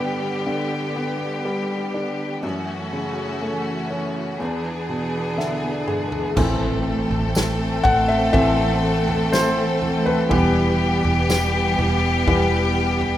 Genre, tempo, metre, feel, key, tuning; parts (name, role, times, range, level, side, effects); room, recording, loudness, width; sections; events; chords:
pop ballad; 61 BPM; 4/4; straight; E dorian; A4 = 444 Hz
felt-muted upright piano; accompaniment; 0.0-13.2 s; E2 to G#5; -23 LUFS; left 1 dB
bright studio string section; sustained chords; 0.0-13.2 s; D3 to A4; -22 LUFS; equal
natural country drum kit; drums; 5.4-13.2 s; crash cymbal, kick drum, snare drum, toms; -26 LUFS; right 1 dB
vintage muted fingered electric bass; bass; 6.4-13.2 s; E1 to A1; -25 LUFS; equal
impact; sound effects; 6.4-10.3 s; -33 LUFS; right 1 dB
tambourine; percussion; 7.4-11.5 s; -34 LUFS; right 4 dB
light reverb, small room ambience; rough home demo mix; -19 LUFS; side -12 dB against mid
0.0-6.4 A section; 6.4-13.2 B section
felt piano fill 4.9-6.4; drum fill 5.4-6.4; impact 6.4-10.3; felt piano solo 6.4-13.2
0.0 G; 2.4 F#m7; 4.4 E7; 6.4 Am; 10.3 Em